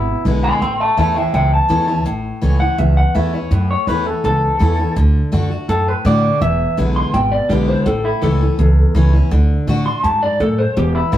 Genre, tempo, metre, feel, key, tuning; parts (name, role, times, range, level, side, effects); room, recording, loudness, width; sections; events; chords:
rockabilly; 166 BPM; 4/4; straight; A major; A4 = 440 Hz
electric guitar through a small old amp; melody; 0.0-11.2 s; E4 to C6; -18 LUFS; equal
picked steel-string acoustic guitar; accompaniment; 0.0-11.2 s; E2 to F#4; -20 LUFS; left 2 dB
upright bass; bass; 0.0-11.2 s; E1 to A2; -16 LUFS; right 1 dB
light reverb; rough rehearsal-room recording; -13 LUFS; side -12 dB against mid
0.0-2.1 A section; 2.1-11.2 A section
0.0 E7; 0.6 A; 5.0 D; 6.4 E7; 7.9 A; 9.3 D